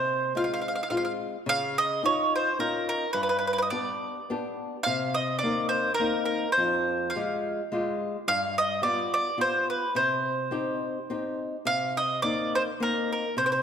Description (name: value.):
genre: italian folk, Italian serenade.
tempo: 107 BPM.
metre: 3/4.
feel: swing 54% on 8ths.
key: C minor.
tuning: A4 = 440 Hz.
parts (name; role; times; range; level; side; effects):
bowl-back mandolin; melody; 0.0-13.6 s; Bb4 to F5; -26 LUFS; right 2 dB; none.
flamenco guitar; accompaniment; 0.0-13.6 s; F2 to G4; -30 LUFS; left 3 dB; none.
room: moderate concert hall reverb, RT60 2.0 s.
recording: none.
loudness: -25 LUFS.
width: side -8 dB against mid.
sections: 0.0-11.7 A section; 11.7-13.6 A section.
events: none.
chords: 0.0 Fm/C; 1.5 Dbadd9; 3.1 G; 4.9 Cm7; 6.6 Fmadd9; 8.3 G7; 9.9 Cm; 11.7 Cm7.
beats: 0.35 0.91 | 1.46 2.02 2.59 | 3.15 3.71 4.29 | 4.86 5.43 6.00 | 6.56 7.13 7.70 | 8.25 8.81 9.38 | 9.94 10.50 11.08 | 11.65 12.22 12.79 | 13.35.